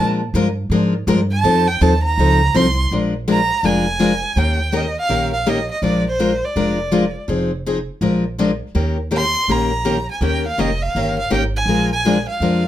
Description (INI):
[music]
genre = acoustic string swing (jazz manouche)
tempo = 164 BPM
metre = 4/4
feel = swing 62% on 8ths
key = Bb mixolydian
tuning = A4 = 440 Hz
[part]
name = picked steel-string acoustic guitar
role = accompaniment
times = 0.0-12.6 s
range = Eb3 to Bb4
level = -18 LUFS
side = left 2 dB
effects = none
[part]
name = upright bass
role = bass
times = 0.0-12.7 s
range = F1 to Bb2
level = -22 LUFS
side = right 1 dB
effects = none
[part]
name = rich violin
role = melody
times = 1.3-12.7 s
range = C5 to C6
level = -20 LUFS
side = right 2 dB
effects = none
[sound]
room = moderate small room reverb, RT60 0.5 s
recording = none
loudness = -15 LUFS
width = side -12 dB against mid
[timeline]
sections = 0.0-2.9 A section; 2.9-12.7 B section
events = violin solo 0.0-2.9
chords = 0.0 Bb7; 1.4 F7; 2.9 Bb7; 4.4 Eb7; 5.8 Bb7; 7.3 Fm7; 8.0 Bb7; 8.8 Eb7; 11.7 Bb7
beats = 0.36 0.72 1.08 | 1.45 1.81 2.18 2.54 | 2.91 3.27 3.64 4.00 | 4.37 4.73 5.10 5.46 | 5.83 6.20 6.56 6.93 | 7.29 7.66 8.02 8.39 | 8.76 9.12 9.49 9.85 | 10.22 10.58 10.95 11.31 | 11.68 12.05 12.41